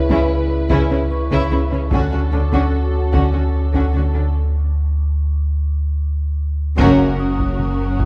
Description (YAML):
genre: cinematic, suspense film score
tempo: 74 BPM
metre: 3/4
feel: straight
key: unclear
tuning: A4 = 440 Hz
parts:
  - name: dark studio violin section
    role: melody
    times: 0.0-8.1 s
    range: A4 to B4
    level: -31 LUFS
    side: equal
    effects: none
  - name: mellow French horn section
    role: sustained chords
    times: 0.0-7.2 s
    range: C#3 to F#4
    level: -26 LUFS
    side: equal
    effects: none
  - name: pure sine sub bass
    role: drone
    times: 0.0-8.1 s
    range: F#1 to D2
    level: -21 LUFS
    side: equal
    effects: none
  - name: vibraphone with soft mallets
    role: texture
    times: 0.0-8.1 s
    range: C#6 to D#6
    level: -39 LUFS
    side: equal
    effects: none
  - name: warm chamber violin section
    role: second line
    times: 0.1-8.1 s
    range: C#4 to F#4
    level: -30 LUFS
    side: equal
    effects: none
  - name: dark symphonic viola section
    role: accompaniment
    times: 0.1-8.1 s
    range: C#4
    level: -25 LUFS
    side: equal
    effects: none
  - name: warm symphonic cello section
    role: bass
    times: 0.1-8.1 s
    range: F#2 to D3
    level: -27 LUFS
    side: equal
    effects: none
  - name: solo taiko drums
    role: drums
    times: 0.1-8.1 s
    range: none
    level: -27 LUFS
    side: equal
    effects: none
  - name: warm symphonic double bass section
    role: bass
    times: 0.7-8.1 s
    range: F#1 to D2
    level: -26 LUFS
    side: equal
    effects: none
  - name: bright trombone section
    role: sustained chords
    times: 6.8-7.2 s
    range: F#2 to F#3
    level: -30 LUFS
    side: equal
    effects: none
room: moderate concert hall reverb, RT60 2.5 s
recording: none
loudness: -18 LUFS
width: mono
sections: 0.0-6.8 A section; 6.8-8.1 B section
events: break 4.4-6.8; drum fill 6.2-6.8; band accent 6.8-7.6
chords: 0.0 C#m7; 1.9 Dmaj7; 6.8 F#